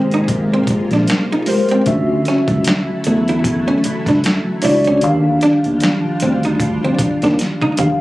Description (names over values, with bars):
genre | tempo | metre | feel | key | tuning
R&B, neo-soul | 76 BPM | 4/4 | swing 57% on 16ths | unclear | A4 = 440 Hz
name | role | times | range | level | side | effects
archtop guitar, miked and amplified | second line | 0.0-7.8 s | A3 to E4 | -18 LUFS | right 1 dB | slapback echo
mellow tine electric piano | accompaniment | 0.0-8.0 s | D3 to F5 | -18 LUFS | equal | medium stereo tremolo
soft string machine | sustained chords | 0.0-8.0 s | C3 to F4 | -24 LUFS | equal | phaser, ensemble chorus
fretless electric bass | bass | 0.0-7.4 s | Ab1 to E2 | -18 LUFS | equal | none
boom bap sampler-style drum kit | drums | 0.1-8.0 s | finger snaps, hi-hat, kick drum, snare drum, toms | -20 LUFS | equal | overdrive
room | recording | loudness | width
moderate studio reverb, RT60 0.7 s | recorded on a phone in the room, club reverb | -13 LUFS | side -17 dB against mid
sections
0.0-8.0 A section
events
drum fill 7.4-8.0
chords
0.0 Abmaj9; 1.9 Dmaj9; 5.0 Ebmaj9